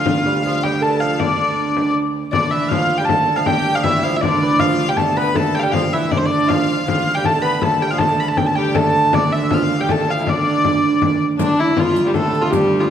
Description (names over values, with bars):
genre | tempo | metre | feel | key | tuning
medieval dance | 159 BPM | 3/4 | straight | D dorian | A4 = 440 Hz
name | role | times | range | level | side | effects
rich hurdy-gurdy | melody | 0.0-12.9 s | D4 to B5 | -18 LUFS | equal | tape echo
lute | second line | 0.0-12.9 s | D2 to B3 | -22 LUFS | right 5 dB | none
rich fiddle | second line | 0.0-12.9 s | G3 to B4 | -27 LUFS | left 5 dB | none
rich viola da gamba | drone | 0.0-12.9 s | D2 | -24 LUFS | right 2 dB | none
frame drum | percussion | 0.1-12.7 s | none | -22 LUFS | left 4 dB | none
riq | percussion | 11.4-12.7 s | none | -29 LUFS | right 6 dB | none
room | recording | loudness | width
wet recital hall reverb, RT60 1.5 s | none | -15 LUFS | side -9 dB against mid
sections
0.0-2.3 A section; 2.3-11.4 B section; 11.4-12.9 B section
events
none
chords
none